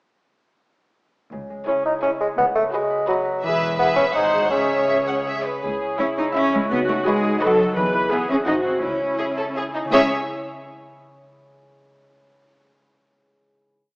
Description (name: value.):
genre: cinematic, playful, whimsical film cue.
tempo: 168 BPM.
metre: 3/4.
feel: straight.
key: C# minor.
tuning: A4 = 440 Hz.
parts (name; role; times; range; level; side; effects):
concert harp; arpeggios; 1.3-11.0 s; G#2 to G#5; -30 LUFS; equal; none.
muted studio cello section; bass; 1.3-10.1 s; C#2 to D#4; -25 LUFS; equal; none.
muted studio double bass section; bass; 1.3-10.1 s; E1 to E2; -35 LUFS; equal; none.
muted studio violin section; melody; 1.7-10.1 s; B4 to F#5; -27 LUFS; equal; none.
muted studio violin section; second line; 1.7-10.1 s; D#4 to E5; -26 LUFS; equal; none.
muted studio viola section; accompaniment; 1.7-10.1 s; E4 to B4; -24 LUFS; equal; none.
warm bassoon; accompaniment; 1.7-5.2 s; F#3 to D#4; -20 LUFS; equal; none.
dark French horn section; sustained chords; 5.6-10.1 s; D#4 to C#5; -28 LUFS; equal; none.
room: moderate scoring stage reverb, RT60 1.8 s.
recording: small speaker sound.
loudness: -18 LUFS.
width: side -35 dB against mid.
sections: 1.3-5.6 A section; 5.6-9.9 A section; 9.9-11.0 final chord.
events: none.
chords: 1.3 C#m; 2.4 B/C#; 3.4 E; 4.1 G#7; 4.5 C#m; 6.7 B/C#; 7.8 E; 8.5 G#7; 8.8 C#m.